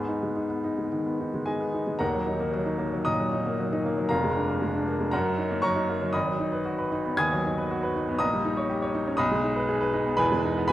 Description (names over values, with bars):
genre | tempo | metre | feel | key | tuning
classical, virtuoso piano study | 117 BPM | 4/4 | uneven beats, rubato | Eb minor | A4 = 441 Hz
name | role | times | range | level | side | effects
clear baby grand piano | solo | 0.0-10.7 s | Eb1 to Ab6 | -24 LUFS | equal | none
room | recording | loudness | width
moderate recital hall reverb, RT60 1.3 s | dark, warm production | -24 LUFS | side -14 dB against mid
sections
0.0-2.0 A section; 2.0-10.7 B section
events
none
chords
0.0 G#m; 2.0 Ebm; 4.1 Bb7/F; 5.1 Ebm/Gb; 6.1 Abm7; 8.2 Eb7/Bb; 9.2 Abm/Cb; 10.2 Emaj7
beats
0.36 0.91 1.47 | 2.00 2.52 3.07 3.59 | 4.11 4.62 5.13 5.64 | 6.14 6.65 7.18 7.70 | 8.20 8.70 9.20 9.69 | 10.19 10.70